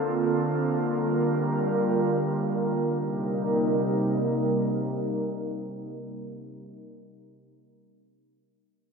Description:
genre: amapiano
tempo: free time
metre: none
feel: none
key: C dorian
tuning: A4 = 442 Hz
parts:
  - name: airy breathy pad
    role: sustained chords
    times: 0.0-6.6 s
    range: C3 to Bb4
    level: -25 LUFS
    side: right 1 dB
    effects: chorus, low-pass filter
room: moderate lush hall reverb, RT60 2.7 s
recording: none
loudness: -24 LUFS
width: side -5 dB against mid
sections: 0.0-3.0 A section; 3.0-7.3 B section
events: filter sweep on analog synth pad 0.0-3.0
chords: 0.0 Bbmaj9; 0.9 Gm7; 3.0 Cm7

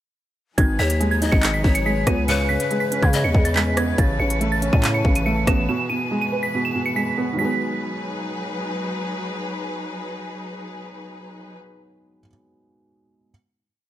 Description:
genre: hip hop, drill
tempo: 141 BPM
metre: 4/4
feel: half-time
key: G# phrygian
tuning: A4 = 441 Hz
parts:
  - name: delicate synth tine bell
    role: melody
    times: 0.6-8.6 s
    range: G#6 to E7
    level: -25 LUFS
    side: right 3 dB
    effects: chorus, digital delay
  - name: felt-muted upright piano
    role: accompaniment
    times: 0.6-13.3 s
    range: B2 to B4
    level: -25 LUFS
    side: right 2 dB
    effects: none
  - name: rich symphonic string section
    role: sustained chords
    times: 0.6-11.6 s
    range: E3 to B4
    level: -31 LUFS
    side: left 2 dB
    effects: none
  - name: growling 808-style bass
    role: bass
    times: 0.6-5.7 s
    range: G#1 to C#3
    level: -22 LUFS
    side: equal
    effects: none
  - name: drill drum kit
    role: drums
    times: 0.6-5.6 s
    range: handclaps, hi-hat, kick drum, rim click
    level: -19 LUFS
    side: equal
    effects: none
  - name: breathy pan flute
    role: second line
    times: 0.8-3.9 s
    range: B4 to D#5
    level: -27 LUFS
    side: left 6 dB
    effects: digital delay
room: small room ambience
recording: none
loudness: -19 LUFS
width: side -13 dB against mid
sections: 0.6-7.4 hook; 7.4-10.8 final chord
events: none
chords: 0.6 G#m7; 2.3 C#m7; 4.0 Aadd9; 5.7 E; 7.4 G#m7

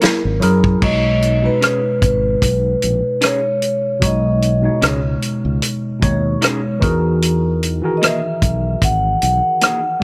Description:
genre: lush 1970s-style soul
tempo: 75 BPM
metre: 4/4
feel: swing 54% on 16ths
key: B major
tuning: A4 = 441 Hz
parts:
  - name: vibraphone with soft mallets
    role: melody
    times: 0.0-10.0 s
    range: A#4 to F#5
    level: -21 LUFS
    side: equal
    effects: none
  - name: tine electric piano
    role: accompaniment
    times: 0.0-10.0 s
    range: B2 to C#5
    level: -22 LUFS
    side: equal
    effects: overdrive, phaser
  - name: electric guitar through a small old amp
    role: riff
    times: 0.0-9.8 s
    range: A#3 to G#4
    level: -26 LUFS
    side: equal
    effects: none
  - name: fingered electric bass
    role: bass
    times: 0.0-9.4 s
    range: G#1 to F#2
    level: -21 LUFS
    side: equal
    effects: none
  - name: warm soul drum kit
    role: drums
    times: 0.0-9.8 s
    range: crash cymbal, hi-hat, kick drum, rim click, snare drum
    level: -20 LUFS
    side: equal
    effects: none
room: studio reverb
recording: none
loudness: -17 LUFS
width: mono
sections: 0.8-10.0 A section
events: none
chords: 0.0 F#9; 0.8 B69; 6.8 Emaj9#11

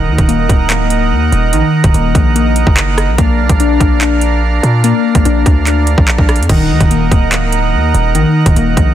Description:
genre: hip hop, drill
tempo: 145 BPM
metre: 4/4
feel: half-time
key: Eb harmonic minor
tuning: A4 = 440 Hz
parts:
  - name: accordion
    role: sustained chords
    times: 0.0-8.9 s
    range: D4 to Gb5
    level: -17 LUFS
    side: right 7 dB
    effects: none
  - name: glassy wavetable pluck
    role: arpeggios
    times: 0.0-8.9 s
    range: Eb3 to D4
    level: -15 LUFS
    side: left 4 dB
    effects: chorus, low-pass filter, ping-pong delay
  - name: hard-hitting 808-style bass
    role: bass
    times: 0.0-8.9 s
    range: D1 to Bb2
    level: -14 LUFS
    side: equal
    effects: none
  - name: drill drum kit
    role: drums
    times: 0.2-8.9 s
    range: crash cymbal, handclaps, hi-hat, kick drum, rim click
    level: -13 LUFS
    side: equal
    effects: overdrive
room: little or no reverb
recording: dense, heavily limited modern master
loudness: -9 LUFS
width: side -11 dB against mid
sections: 0.0-6.5 A section; 6.5-8.9 A section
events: none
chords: 0.0 Ebm; 3.2 Bb; 6.5 Ebm

